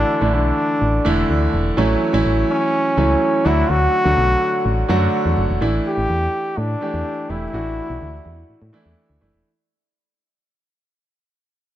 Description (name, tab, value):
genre	1980s-style pop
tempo	125 BPM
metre	4/4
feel	straight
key	unclear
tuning	A4 = 440 Hz
part	bright trombone	melody	0.0-9.0 s	C#4 to G4	-21 LUFS	equal	tape echo
part	clear grand piano	accompaniment	0.0-9.5 s	D3 to G4	-20 LUFS	right 1 dB	none
part	solid FM bass	bass	0.0-9.4 s	E1 to A2	-20 LUFS	equal	none
room	light reverb, studio ambience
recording	none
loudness	-16 LUFS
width	side -12 dB against mid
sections	0.0-5.6 A section; 5.6-9.5 B section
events	fade-out 5.6-9.5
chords	0.0 Asus4; 1.8 F#m7/A; 3.5 D; 5.6 Asus4